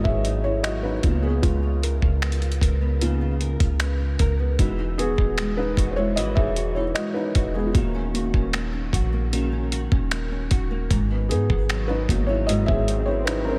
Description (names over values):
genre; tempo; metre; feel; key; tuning
contemporary R&B; 76 BPM; 4/4; straight; G# minor; A4 = 440 Hz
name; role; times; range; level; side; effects
felt-muted upright piano; accompaniment; 0.0-13.6 s; G#3 to E5; -29 LUFS; equal; none
nylon-string guitar; arpeggios; 0.0-13.6 s; G#2 to A#4; -32 LUFS; equal; ensemble chorus, delay
soft 808-style bass; bass; 0.0-13.6 s; D#1 to G#2; -27 LUFS; equal; none
dusty soul sampler-style drum kit; drums; 0.1-13.5 s; finger snaps, hi-hat, kick drum; -26 LUFS; equal; none
swell; sound effects; 12.9-13.6 s; none; -38 LUFS; equal; none
room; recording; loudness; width
light reverb; none; -23 LUFS; mono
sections
0.0-13.6 A section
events
felt piano solo 0.0-13.6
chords
0.0 G#m7; 1.0 C#13; 4.6 Emaj9; 7.7 D#m7; 10.9 G#m7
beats
0.64 | 1.43 2.22 3.01 3.80 | 4.59 5.38 6.17 6.96 | 7.75 8.54 9.33 10.12 | 10.90 11.70 12.48 13.27